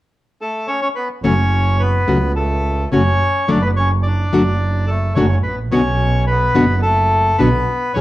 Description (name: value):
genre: tango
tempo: 107 BPM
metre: 4/4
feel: rubato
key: unclear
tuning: A4 = 440 Hz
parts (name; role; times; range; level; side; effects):
- bandoneon; melody; 0.4-8.0 s; A3 to D5; -18 LUFS; left 1 dB; plate reverb
- nylon-string guitar; accompaniment; 1.2-8.0 s; B2 to G#4; -17 LUFS; left 2 dB; none
- clear double bass; bass; 1.2-8.0 s; F#1 to C#2; -17 LUFS; right 2 dB; none
room: moderate large studio reverb, RT60 0.8 s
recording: dark, warm production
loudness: -14 LUFS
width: side -16 dB against mid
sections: 0.0-1.2 A section; 1.2-8.0 B section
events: none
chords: 0.0 Aadd9; 1.2 F#m; 3.5 D/F#